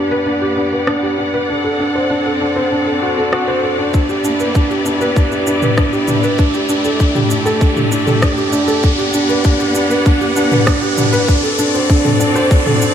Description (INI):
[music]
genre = piano and strings electronica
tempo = 98 BPM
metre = 4/4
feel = straight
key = unclear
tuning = A4 = 437 Hz
[part]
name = rich studio string section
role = sustained chords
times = 0.0-12.9 s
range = A3 to F#5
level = -20 LUFS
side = left 1 dB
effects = sidechain pumping, low-pass filter, shimmer reverb
[part]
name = felt-muted upright piano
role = riff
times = 0.0-12.9 s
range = D4 to C5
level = -15 LUFS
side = right 1 dB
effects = ping-pong delay, shimmer reverb
[part]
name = riser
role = sound effects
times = 0.0-12.9 s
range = none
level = -24 LUFS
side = left 1 dB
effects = none
[part]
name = organic electronic drum kit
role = drums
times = 0.9-12.9 s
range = rim click, shaker, toms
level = -19 LUFS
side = left 1 dB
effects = none
[part]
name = electronic kick drum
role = drums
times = 3.9-12.6 s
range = none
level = -14 LUFS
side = equal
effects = none
[sound]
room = moderate concert hall reverb, RT60 2.2 s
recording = none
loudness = -12 LUFS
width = side -9 dB against mid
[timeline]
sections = 0.0-12.9 A section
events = build-up 0.0-12.9; riser 0.0-12.9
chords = 0.0 Gmaj7; 1.5 D7; 3.9 Em7; 6.4 A7sus4; 8.8 Gmaj7; 11.3 D7